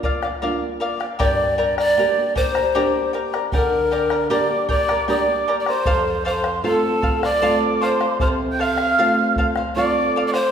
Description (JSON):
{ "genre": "andean folk, Andean ensemble", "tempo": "77 BPM", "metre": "3/4", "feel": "straight", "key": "G minor", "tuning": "A4 = 440 Hz", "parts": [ { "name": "charango", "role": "accompaniment", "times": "0.0-10.5 s", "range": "G4 to Bb5", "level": "-24 LUFS", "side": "left 3 dB", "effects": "none" }, { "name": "nylon-string guitar", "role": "accompaniment", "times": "0.0-10.4 s", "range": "F2 to G4", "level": "-25 LUFS", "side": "right 3 dB", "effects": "none" }, { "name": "bombo", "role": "percussion", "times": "0.0-10.5 s", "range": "none", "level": "-27 LUFS", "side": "equal", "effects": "none" }, { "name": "mellow polished pan flute", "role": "melody", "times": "1.2-10.5 s", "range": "A4 to G5", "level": "-20 LUFS", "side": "equal", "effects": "none" }, { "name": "mellow quena", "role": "second line", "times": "4.3-10.5 s", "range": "A5 to G6", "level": "-23 LUFS", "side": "right 2 dB", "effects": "none" } ], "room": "wet recital hall reverb, RT60 1.6 s", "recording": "recorded in a church or concert hall", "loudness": "-17 LUFS", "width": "side -8 dB against mid", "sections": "0.0-10.5 A section", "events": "none", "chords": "0.0 Bb; 1.2 Gm; 5.9 F" }